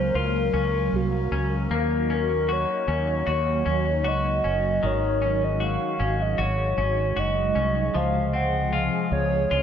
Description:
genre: dream pop.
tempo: 77 BPM.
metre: 4/4.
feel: straight.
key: unclear.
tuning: A4 = 440 Hz.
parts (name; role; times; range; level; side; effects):
hollow clarinet-like synth lead; melody; 0.0-9.6 s; Gb4 to Gb5; -26 LUFS; equal; chorus, tape echo.
phased analog pad; sustained chords; 0.0-9.6 s; C3 to F5; -30 LUFS; right 2 dB; phaser, chorus.
semi-hollow electric guitar; arpeggios; 0.0-9.6 s; Eb3 to Gb4; -28 LUFS; left 4 dB; wide subtle chorus, tape echo.
fretless electric bass; bass; 0.0-9.6 s; Gb1 to Eb2; -26 LUFS; equal; none.
vibraphone with medium mallets; texture; 7.9-9.6 s; Eb5; -38 LUFS; right 1 dB; none.
room: moderate scoring stage reverb, RT60 1.9 s.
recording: none.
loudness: -22 LUFS.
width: side -8 dB against mid.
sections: 0.0-9.6 A section.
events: none.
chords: 0.0 Gbmaj7/Db; 1.7 Ebm7; 4.8 Ab7sus4; 7.9 Dbmaj7.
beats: 0.15 0.93 | 1.71 2.49 3.27 4.05 | 4.83 5.61 6.39 7.17 | 7.95 8.73 9.51.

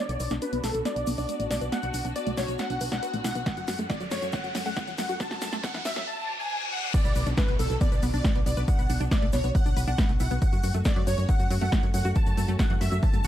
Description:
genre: uplifting trance.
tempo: 138 BPM.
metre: 4/4.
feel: straight.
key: B minor.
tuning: A4 = 440 Hz.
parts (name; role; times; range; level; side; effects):
supersaw chords; melody; 0.0-13.3 s; A4 to A5; -33 LUFS; equal; ensemble chorus, sidechain pumping, low-pass filter, ping-pong delay.
plucky unison lead; second line; 0.0-13.3 s; A4 to A5; -38 LUFS; equal; sidechain pumping, ping-pong delay.
dark chamber string section; sustained chords; 0.0-13.3 s; A3 to F#4; -39 LUFS; left 2 dB; sidechain pumping.
tight sequenced synth; arpeggios; 0.0-13.3 s; F#2 to B4; -36 LUFS; right 1 dB; chorus, sidechain pumping, ping-pong delay.
riser, reverse cymbal and downlifter; sound effects; 2.3-10.4 s; none; -38 LUFS; left 2 dB; none.
solid FM bass; bass; 0.1-13.3 s; A1 to F#2; -30 LUFS; equal; sidechain pumping.
house drum kit; drums; 0.1-13.3 s; crash cymbal, hi-hat, snare drum; -34 LUFS; equal; none.
egg shaker; percussion; 0.1-13.3 s; none; -45 LUFS; left 4 dB; none.
electronic kick drum; drums; 3.5-13.1 s; none; -25 LUFS; equal; none.
room: little or no reverb.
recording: dark, warm production, high-pass filter.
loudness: -24 LUFS.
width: side -12 dB against mid.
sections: 0.0-6.9 A section; 6.9-13.3 B section.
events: build-up 0.0-6.9; drum fill 0.0-6.1; filter sweep on supersaw synth 0.0-6.9; filter sweep on synth arpeggio sound 0.0-6.9; filter sweep 0.0-6.9; riser 2.3-6.1; reverse cymbal 6.1-6.9; drop 6.9-13.3.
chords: 0.0 Bm; 3.5 F#m; 6.9 Bm; 10.4 F#m.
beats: 0.42 0.85 1.29 | 1.72 2.16 2.59 3.03 | 3.46 3.90 4.33 4.77 | 5.20 5.64 6.07 6.51 | 6.94 7.38 7.81 8.24 | 8.68 9.12 9.55 9.98 | 10.42 10.85 11.29 11.72 | 12.16 12.59 13.03.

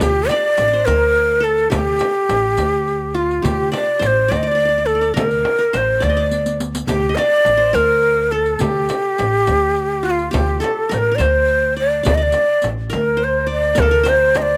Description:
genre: Arabic maqam ensemble.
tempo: 70 BPM (dotted quarters).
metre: 6/8.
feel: straight.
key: D minor.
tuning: A4 = 442 Hz.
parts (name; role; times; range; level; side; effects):
breathy ney; melody; 0.0-14.6 s; F4 to Eb5; -18 LUFS; equal; none.
qanun; second line; 0.0-14.6 s; F4 to Eb5; -28 LUFS; equal; slapback echo.
upright bass; bass; 0.0-14.6 s; A1 to D2; -24 LUFS; equal; none.
riq; percussion; 0.0-14.5 s; none; -32 LUFS; equal; none.
frame drum; percussion; 0.3-14.5 s; none; -27 LUFS; equal; none.
room: little or no reverb.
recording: recorded outdoors, with no room sound.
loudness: -17 LUFS.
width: mono.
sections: 0.0-13.8 A section.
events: drum fill 6.3-6.9.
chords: none.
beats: | 0.00 0.86 | 1.72 2.58 | 3.44 4.30 | 5.16 6.02 | 6.88 7.74 | 8.61 9.47 | 10.33 11.19 | 12.05 12.91 | 13.77.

